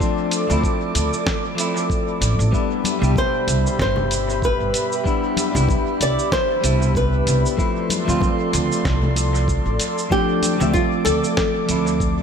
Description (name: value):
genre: sunset chillout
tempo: 95 BPM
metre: 4/4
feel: swing 56% on 16ths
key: unclear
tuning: A4 = 441 Hz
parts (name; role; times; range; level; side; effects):
- clean electric guitar; accompaniment; 0.0-12.2 s; B2 to E5; -23 LUFS; moving between left 7 dB and right 4 dB; auto-pan, dub echo
- airy breathy pad; sustained chords; 0.0-12.2 s; G4 to D6; -26 LUFS; equal; chorus, vintage 12-bit sampler grit
- dusty soul sampler-style drum kit; drums; 0.0-12.1 s; cabasa, hi-hat, snare drum; -27 LUFS; right 1 dB; dub echo
- electronic kick drum; drums; 0.0-12.1 s; none; -24 LUFS; equal; none
- upright bass; bass; 0.5-12.2 s; G1 to D2; -21 LUFS; right 1 dB; none
- congas; percussion; 2.8-10.9 s; none; -28 LUFS; left 5 dB; none
- flamenco guitar; melody; 3.2-12.0 s; F4 to D5; -23 LUFS; equal; dub echo
room: light reverb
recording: echo-heavy mix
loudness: -17 LUFS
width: side -7 dB against mid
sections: 0.0-12.2 A section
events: none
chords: 0.0 Dm7; 2.5 Cmaj7; 7.6 Dm7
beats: | 0.00 0.63 1.26 1.90 | 2.53 3.16 3.79 4.42 | 5.05 5.69 6.32 6.95 | 7.58 8.21 8.84 9.47 | 10.11 10.74 11.37 12.00